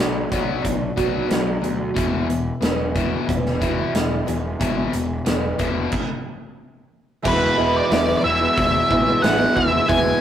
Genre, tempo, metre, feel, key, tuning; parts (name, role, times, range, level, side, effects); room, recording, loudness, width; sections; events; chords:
quiet-loud alternative rock; 91 BPM; 4/4; straight; A4 = 439 Hz
fingerpicked old ladder-braced acoustic guitar; arpeggios; 0.0-10.2 s; B2 to F#4; -24 LUFS; right 3 dB; slapback echo
distorted electric guitar; riff; 0.0-10.2 s; E2 to B3; -25 LUFS; left 5 dB; distortion
fuzz picked electric bass; bass; 0.0-10.1 s; E1 to E2; -27 LUFS; equal; overdrive
big rock drum kit; drums; 0.3-10.0 s; crash cymbal, hi-hat, kick drum, snare drum; -24 LUFS; equal
octave-fuzz lead guitar; melody; 7.3-10.2 s; B4 to G#5; -20 LUFS; equal; distortion
light reverb; rough rehearsal-room recording; -18 LUFS; side -10 dB against mid
0.0-7.3 A section; 7.3-10.2 B section
stop 5.9-7.3
0.0 Bm7; 2.0 E